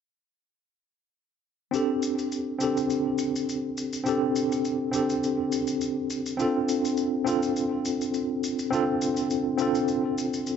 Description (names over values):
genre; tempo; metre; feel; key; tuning
sunset chillout; 103 BPM; 4/4; swing 55% on 16ths; unclear; A4 = 440 Hz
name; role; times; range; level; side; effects
tine electric piano; accompaniment; 1.7-10.6 s; C4 to A4; -24 LUFS; equal; medium stereo tremolo, auto-pan, digital delay
shaker; drums; 1.7-10.6 s; none; -37 LUFS; left 4 dB; none
room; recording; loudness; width
moderate plate reverb, RT60 1.5 s, small room ambience; nothing above 7.7 kHz; -24 LUFS; side -7 dB against mid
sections
1.7-10.6 A section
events
none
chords
1.7 Gsus24/C; 6.4 F6/C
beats
| 1.74 2.32 2.90 3.48 | 4.07 4.65 5.23 5.82 | 6.40 6.98 7.56 8.14 | 8.73 9.31 9.89 10.47